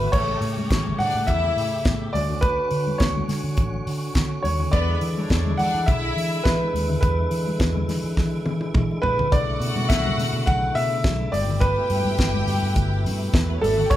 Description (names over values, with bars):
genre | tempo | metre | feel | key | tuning
disco | 104 BPM | 4/4 | straight | unclear | A4 = 441 Hz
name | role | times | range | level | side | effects
clear concert grand piano | melody | 0.0-14.0 s | A4 to F#5 | -26 LUFS | right 1 dB | none
rich studio string section | second line | 0.0-14.0 s | A3 to A5 | -30 LUFS | left 3 dB | none
tonewheel organ | sustained chords | 0.0-14.0 s | B2 to G4 | -32 LUFS | equal | chorus vibrato, fast rotary speaker
vintage muted fingered electric bass | bass | 0.0-14.0 s | G1 to E3 | -26 LUFS | equal | none
congas | percussion | 0.0-14.0 s | none | -31 LUFS | left 3 dB | none
damped 70s drum kit | drums | 0.1-14.0 s | crash cymbal, hi-hat, kick drum, snare drum, toms | -24 LUFS | equal | none
room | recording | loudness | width
moderate large studio reverb, RT60 1.1 s | band playing live in one room | -20 LUFS | side -13 dB against mid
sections
0.1-9.3 A section; 9.3-14.0 B section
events
drum fill 8.2-9.3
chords
0.1 A7; 2.1 Dmaj7; 4.7 E7; 9.3 Bm11; 11.3 G69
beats
| 0.13 0.70 1.28 1.85 | 2.43 3.00 3.58 4.15 | 4.73 5.30 5.88 6.45 | 7.03 7.60 8.17 8.75 | 9.32 9.89 10.47 11.04 | 11.61 12.19 12.76 13.33 | 13.90